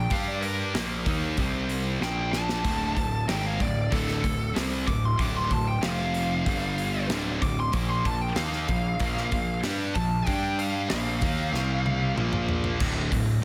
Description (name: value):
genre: heavy metal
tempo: 94 BPM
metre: 4/4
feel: straight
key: D phrygian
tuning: A4 = 440 Hz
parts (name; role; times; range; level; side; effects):
- high-gain lead guitar; melody; 0.0-12.1 s; A4 to D6; -34 LUFS; equal; distortion, slapback echo, tape echo
- scooped high-gain guitar; riff; 0.0-13.4 s; D2 to G4; -34 LUFS; equal; distortion
- sludgy distorted guitar; riff; 0.0-13.4 s; D2 to G4; -33 LUFS; equal; overdrive
- fuzz picked electric bass; bass; 0.0-13.4 s; D1 to G2; -34 LUFS; equal; overdrive
- modern studio drum kit; drums; 0.1-13.3 s; crash cymbal, hi-hat, kick drum, snare drum, splash cymbal, toms; -33 LUFS; equal; none
room: moderate lush hall reverb, RT60 2.8 s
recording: big arena sound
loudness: -27 LUFS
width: mono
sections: 0.0-12.8 A section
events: lead electric guitar solo 0.0-12.8; drum fill 2.0-2.7, 11.5-12.8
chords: 0.1 G5; 0.7 Bb5; 1.4 C5; 2.0 Bb5; 2.7 D5; 5.8 F5; 6.5 G5; 7.1 D5; 7.7 Bb5; 10.3 G5; 10.9 Bb5; 11.5 C5; 12.2 Bb5; 12.8 D5